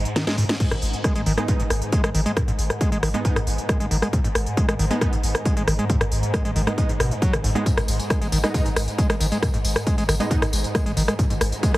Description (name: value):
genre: driving peak-time techno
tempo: 136 BPM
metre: 4/4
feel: straight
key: G# minor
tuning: A4 = 441 Hz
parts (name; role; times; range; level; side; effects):
- saturated sub bass; bass; 0.0-11.8 s; G#1; -26 LUFS; equal; tube saturation, sidechain pumping, low-pass filter
- swarming drone; drone; 0.0-11.8 s; G#2; -31 LUFS; equal; built-in reverb, sidechain pumping
- techno drum kit; drums; 0.1-11.8 s; crash cymbal, hi-hat, rim click, snare drum, tambourine; -26 LUFS; equal; sidechain pumping on hats, sidechain pumping on cymbals, sidechain pumping on perc
- overdriven acid bass; riff; 0.2-11.8 s; F#2 to G#3; -26 LUFS; equal; distortion, sidechain pumping, digital delay
- electronic kick drum; drums; 0.6-11.7 s; none; -23 LUFS; equal; none
- rave stab; stabs; 1.4-10.4 s; G#3 to D#4; -31 LUFS; right 2 dB; chorus, built-in reverb, sidechain pumping, digital delay
- riser; sound effects; 11.4-11.8 s; none; -38 LUFS; right 2 dB; none
room: light reverb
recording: heavily compressed radio sound, multiband compression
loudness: -19 LUFS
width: side -18 dB against mid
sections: 0.0-11.8 A section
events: drum fill 0.2-0.6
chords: 0.0 G#m